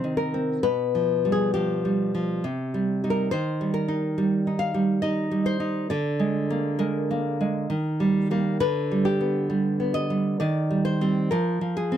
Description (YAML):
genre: romantic piece for solo classical guitar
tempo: 67 BPM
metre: 3/4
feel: rubato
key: C minor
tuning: A4 = 439 Hz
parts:
  - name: nylon-string guitar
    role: solo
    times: 0.0-12.0 s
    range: B2 to F5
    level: -22 LUFS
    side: equal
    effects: none
room: light reverb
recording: none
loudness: -22 LUFS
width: side -10 dB against mid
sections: 0.0-12.0 A section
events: none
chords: 0.0 Cm; 0.6 G7/B; 2.4 Cm; 3.3 Eb; 5.9 Bb7/D; 7.7 Eb; 8.6 G/D; 10.4 Cm/Eb; 11.3 Fm